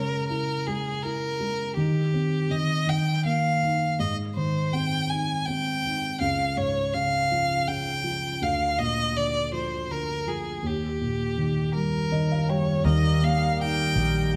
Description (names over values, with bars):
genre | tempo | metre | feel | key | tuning
pop | 54 BPM (dotted quarters) | 6/8 | straight | unclear | A4 = 440 Hz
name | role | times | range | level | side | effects
rich violin | melody | 0.0-14.3 s | G4 to Ab5 | -29 LUFS | equal | none
felt-muted upright piano | accompaniment | 0.0-14.4 s | Db2 to G5 | -29 LUFS | equal | none
tonewheel organ | sustained chords | 12.8-14.4 s | G3 to Eb4 | -35 LUFS | equal | overdrive, slow rotary speaker
vintage muted fingered electric bass | bass | 12.8-14.4 s | Bb1 to Eb2 | -29 LUFS | equal | none
twelve-string electric guitar | arpeggios | 12.9-14.4 s | Eb3 to G4 | -33 LUFS | equal | none
room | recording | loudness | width
wet stone room reverb, RT60 1.2 s | band playing live in one room | -26 LUFS | mono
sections
0.0-12.9 A section; 12.9-14.4 B section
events
felt piano fill 11.8-12.9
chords
0.0 Dbm6; 1.8 Eb6; 2.9 Eb5; 4.0 Ab; 6.2 Db; 8.4 Bb/D; 10.6 Eb